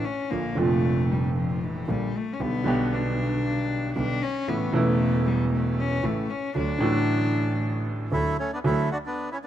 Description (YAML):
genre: tango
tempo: 115 BPM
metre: 4/4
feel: rubato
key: unclear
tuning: A4 = 440 Hz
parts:
  - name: warm cello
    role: second line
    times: 0.0-8.1 s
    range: E3 to D4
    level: -28 LUFS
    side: left 4 dB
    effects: none
  - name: warm concert grand piano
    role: accompaniment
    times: 0.3-8.9 s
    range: E1 to G4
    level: -25 LUFS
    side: right 1 dB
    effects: none
  - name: clear double bass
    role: bass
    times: 0.3-8.9 s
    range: E1 to D2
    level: -30 LUFS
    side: right 2 dB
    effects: none
  - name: bandoneon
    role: melody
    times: 8.1-9.5 s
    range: A3 to F#4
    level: -27 LUFS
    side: right 1 dB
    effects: none
room: light reverb, small room ambience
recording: rough home demo mix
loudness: -23 LUFS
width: side -11 dB against mid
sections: 0.0-8.6 A section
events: cello solo 0.0-8.6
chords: 0.3 Bb; 2.4 G/B; 4.5 A; 6.5 D